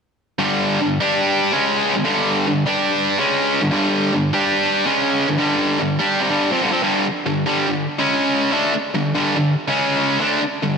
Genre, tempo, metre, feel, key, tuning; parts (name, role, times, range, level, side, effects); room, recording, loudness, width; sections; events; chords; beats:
rock; 144 BPM; 4/4; straight; A4 = 440 Hz
high-gain distorted guitar; solo; 0.4-10.8 s; G2 to G4; -16 LUFS; equal; distortion, digital delay
wet lush hall reverb, RT60 2.1 s; big arena sound; -16 LUFS; side -5 dB against mid
0.4-7.1 A section; 7.1-10.8 B section
0.4 G5; 1.5 C#5; 1.9 G5; 3.2 C#5; 3.6 G5; 4.9 C#5; 5.3 G5; 8.0 C#5; 8.5 G5; 9.7 C#5; 10.2 G5
| 0.38 0.80 1.22 1.63 | 2.05 2.46 2.88 3.30 | 3.71 4.13 4.55 4.97 | 5.38 5.80 6.22 6.64 | 7.06 7.47 7.89 8.31 | 8.73 9.15 9.57 9.99 | 10.41